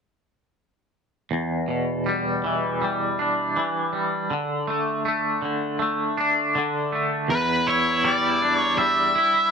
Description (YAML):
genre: rock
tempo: 80 BPM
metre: 4/4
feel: straight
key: E minor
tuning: A4 = 440 Hz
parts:
  - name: twangy electric guitar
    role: riff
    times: 1.3-9.5 s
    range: E2 to E4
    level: -22 LUFS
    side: equal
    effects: tremolo, double-tracked left and right
  - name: octave-fuzz lead guitar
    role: melody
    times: 7.3-9.5 s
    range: B4 to E5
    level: -20 LUFS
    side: equal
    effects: distortion, analog delay
room: light reverb, digital ambience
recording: none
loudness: -21 LUFS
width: side -6 dB against mid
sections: 1.3-7.3 A section; 7.3-9.5 B section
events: none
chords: 1.3 Em7; 4.3 D5; 7.3 Em7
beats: | 1.31 2.06 2.81 3.56 | 4.31 5.05 5.80 6.55 | 7.30 8.05 8.80